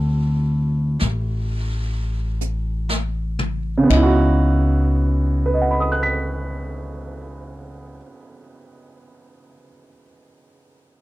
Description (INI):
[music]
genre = jazz ballad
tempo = 39-46 BPM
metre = 4/4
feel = swing 69% on 8ths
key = C# minor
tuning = A4 = 442 Hz
[part]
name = warm grand piano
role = accompaniment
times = 0.0-11.0 s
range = C#3 to B6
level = -20 LUFS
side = right 2 dB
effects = none
[part]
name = upright bass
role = bass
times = 0.0-8.0 s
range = A1 to D2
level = -20 LUFS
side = left 1 dB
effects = none
[part]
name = jazz brush drum kit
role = drums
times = 1.0-4.4 s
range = brushed snare drum, hi-hat, kick drum, ride cymbal, snare drum, toms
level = -29 LUFS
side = left 1 dB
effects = none
[sound]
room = little or no reverb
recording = none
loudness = -18 LUFS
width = side -17 dB against mid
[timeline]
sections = 0.0-3.9 A section; 3.9-10.1 B section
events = slowing down 0.0-3.9; drum fill 2.4-3.9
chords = 0.0 D7; 3.9 C#m11